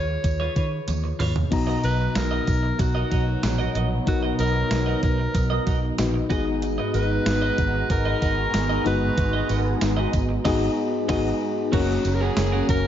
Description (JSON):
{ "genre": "1980s-style pop", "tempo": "94 BPM", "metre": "4/4", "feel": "straight", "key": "unclear", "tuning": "A4 = 440 Hz", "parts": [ { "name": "breathy alto saxophone", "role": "melody", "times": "0.0-12.9 s", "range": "F#4 to Db5", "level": "-29 LUFS", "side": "equal", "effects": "ping-pong delay" }, { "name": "FM electric piano", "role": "accompaniment", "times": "0.0-12.9 s", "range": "Ab2 to A#5", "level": "-27 LUFS", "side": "left 4 dB", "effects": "chorus" }, { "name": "twelve-string electric guitar", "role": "riff", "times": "0.0-12.9 s", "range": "Db4 to D#5", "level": "-32 LUFS", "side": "right 4 dB", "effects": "lush chorus, ping-pong delay" }, { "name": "vintage muted fingered electric bass", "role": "bass", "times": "0.0-12.9 s", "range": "Gb1 to Eb3", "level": "-25 LUFS", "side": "right 1 dB", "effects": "none" }, { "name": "clean 12-bit digital drum machine", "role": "drums", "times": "0.2-12.8 s", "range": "crash cymbal, hi-hat, kick drum, snare drum, tambourine, toms", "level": "-27 LUFS", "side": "right 1 dB", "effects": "none" }, { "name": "tambourine", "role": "percussion", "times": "0.2-12.8 s", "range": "none", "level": "-45 LUFS", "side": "right 10 dB", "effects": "none" }, { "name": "sweeping resonant pad", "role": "sustained chords", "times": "1.5-12.9 s", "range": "F#3 to Bb5", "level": "-30 LUFS", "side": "right 3 dB", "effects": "wide subtle chorus" }, { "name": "thick fuzz guitar", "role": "accompaniment", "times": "11.7-12.9 s", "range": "Gb2 to Gb3", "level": "-34 LUFS", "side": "right 2 dB", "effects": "distortion, ensemble chorus" } ], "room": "moderate plate reverb, RT60 2.1 s", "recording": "dreamy mix soaked in reverb, nothing above 7.6 kHz", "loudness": "-20 LUFS", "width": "side -10 dB against mid", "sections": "0.0-1.5 A section; 1.5-11.7 B section; 11.7-12.9 C section", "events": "drum fill 0.9-1.5; band accent 10.5-11.7", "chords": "0.0 Db7/Eb; 1.5 Bmaj7; 6.3 Abm7; 11.7 Gb" }